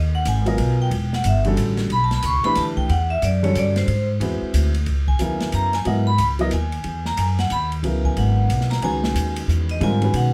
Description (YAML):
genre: modal jazz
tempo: 182 BPM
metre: 3/4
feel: swing 64% on 8ths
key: C# dorian from 4.9 s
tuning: A4 = 440 Hz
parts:
  - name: upright bass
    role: bass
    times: 0.0-10.3 s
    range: E1 to B2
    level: -23 LUFS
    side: equal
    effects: none
  - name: vibraphone with medium hard mallets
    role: melody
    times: 0.1-10.3 s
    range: B#4 to C#6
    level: -26 LUFS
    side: equal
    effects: none
  - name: open jazz drum kit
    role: drums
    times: 0.3-10.2 s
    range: hi-hat, kick drum, ride cymbal, snare drum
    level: -32 LUFS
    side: equal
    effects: none
  - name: warm upright piano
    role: accompaniment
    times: 0.5-10.3 s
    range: C#3 to D#5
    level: -27 LUFS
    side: equal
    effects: none
room: light reverb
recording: none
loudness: -21 LUFS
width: mono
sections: 0.0-4.9 A section; 4.9-10.3 A section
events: vibraphone solo 0.0-10.3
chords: 0.0 G#m9; 0.9 Em9; 3.9 G#7alt; 4.9 C#m11